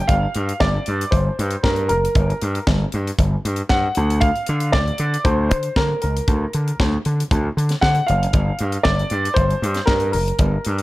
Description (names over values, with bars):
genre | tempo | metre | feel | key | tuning
disco | 116 BPM | 4/4 | straight | unclear | A4 = 441 Hz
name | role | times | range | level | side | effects
warm grand piano | melody | 0.0-10.8 s | Bb4 to G5 | -22 LUFS | equal | none
gritty slap bass | bass | 0.1-10.8 s | Gb1 to D3 | -20 LUFS | equal | overdrive
tight funk drum kit | drums | 0.1-10.8 s | hi-hat, kick drum, snare drum | -22 LUFS | equal | none
room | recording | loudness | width
studio reverb | none | -17 LUFS | side -18 dB against mid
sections
0.1-10.8 A section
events
none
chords
0.1 Gm; 4.0 D(#5, no3); 8.3 Gm7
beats
| 0.09 0.61 1.12 1.64 | 2.15 2.67 3.19 3.70 | 4.22 4.74 5.25 5.77 | 6.28 6.80 7.31 7.83 | 8.34 8.86 9.37 9.89 | 10.40